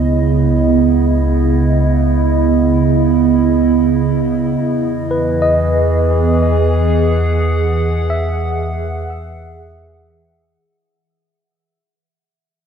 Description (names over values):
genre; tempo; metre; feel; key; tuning
ambient; free time; none; none; unclear; A4 = 440 Hz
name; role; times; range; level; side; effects
warbly tape-like pad; sustained chords; 0.0-10.6 s; C#3 to F#5; -14 LUFS; right 4 dB; chorus, built-in reverb, phaser
warm sub bass; bass; 0.0-10.6 s; C#2 to E2; -17 LUFS; equal; none
barky tine electric piano; arpeggios; 5.1-10.6 s; B4 to E5; -20 LUFS; left 1 dB; tape echo
room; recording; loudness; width
wet cathedral reverb, RT60 5.1 s; cassette tape; -12 LUFS; side -7 dB against mid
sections
0.0-10.6 A section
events
fade-out 6.6-10.6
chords
0.0 C#m9; 4.6 Emaj9